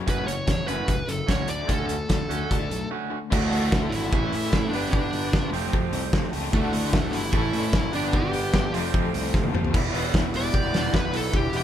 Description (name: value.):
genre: indie rock.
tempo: 150 BPM.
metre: 4/4.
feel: straight.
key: unclear.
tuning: A4 = 440 Hz.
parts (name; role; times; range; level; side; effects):
overdriven electric guitar; riff; 0.0-11.6 s; E2 to B4; -32 LUFS; left 7 dB; tremolo.
fuzz lead guitar; melody; 0.1-11.6 s; A3 to D5; -29 LUFS; equal; distortion.
electric guitar at the edge of break-up; riff; 0.1-11.6 s; E3 to A4; -31 LUFS; right 7 dB; none.
fuzz picked electric bass; bass; 0.1-11.6 s; E1 to A2; -30 LUFS; equal; overdrive.
loose indie drum kit; drums; 0.1-11.6 s; crash cymbal, hi-hat, kick drum, snare drum, toms; -25 LUFS; equal; none.
tonewheel organ; sustained chords; 6.5-11.6 s; G4 to D6; -40 LUFS; equal; none.
room: light reverb.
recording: band playing live in one room.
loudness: -22 LUFS.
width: side -10 dB against mid.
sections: 0.0-3.3 A section; 3.3-9.7 B section; 9.7-11.6 C section.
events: break 2.9-3.3; drum fill 9.3-9.7; lead electric guitar solo 9.7-11.6.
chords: 0.0 F#m7; 1.5 Dmaj7; 3.3 Dadd9; 4.1 A; 4.7 G; 5.5 Fadd9; 6.5 Dadd9; 7.3 A; 7.9 G; 8.7 Fadd9; 9.7 Em.